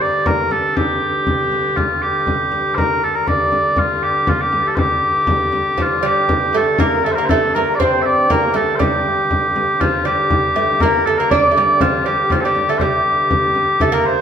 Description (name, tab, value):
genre	medieval dance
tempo	120 BPM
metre	2/4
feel	straight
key	G minor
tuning	A4 = 438 Hz
part	mellow small bagpipes	melody	0.0-14.2 s	F4 to E5	-16 LUFS	equal	none
part	warm hurdy-gurdy	drone	0.0-14.2 s	G2 to D3	-25 LUFS	left 1 dB	none
part	frame drum	percussion	0.0-14.0 s	none	-21 LUFS	left 1 dB	none
part	lute	second line	5.8-14.2 s	F3 to D4	-19 LUFS	right 3 dB	none
room	wet large studio reverb, RT60 1.5 s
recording	band playing live in one room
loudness	-14 LUFS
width	side -8 dB against mid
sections	0.0-5.8 A section; 5.8-13.8 A section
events	none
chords	none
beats	0.25 | 0.75 1.25 | 1.76 2.26 | 2.77 3.27 | 3.77 4.27 | 4.78 5.28 | 5.78 6.28 | 6.79 7.29 | 7.79 8.29 | 8.79 9.30 | 9.80 10.30 | 10.80 11.30 | 11.80 12.30 | 12.80 13.30 | 13.80